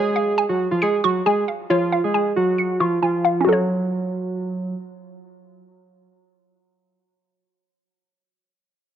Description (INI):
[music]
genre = hip hop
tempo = 136 BPM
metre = 4/4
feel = half-time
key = F# harmonic minor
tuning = A4 = 436 Hz
[part]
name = warbly lo-fi synth keys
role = melody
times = 0.0-4.8 s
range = E#3 to G#4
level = -20 LUFS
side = right 2 dB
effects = chorus, low-pass filter, analog delay
[part]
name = hollow square pluck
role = accompaniment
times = 0.0-7.9 s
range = C#4 to C#7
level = -22 LUFS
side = left 1 dB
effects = chorus, low-pass filter
[sound]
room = light reverb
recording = dry, gritty hardware recording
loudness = -18 LUFS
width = side -9 dB against mid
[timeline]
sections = 0.0-3.5 A section; 3.5-7.0 B section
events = filter sweep 0.0-3.5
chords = 0.0 C#; 3.5 F#m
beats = 0.38 0.82 1.26 | 1.70 2.14 2.58 3.03 | 3.47 3.91 4.35 4.79 | 5.23 5.67 6.11 6.55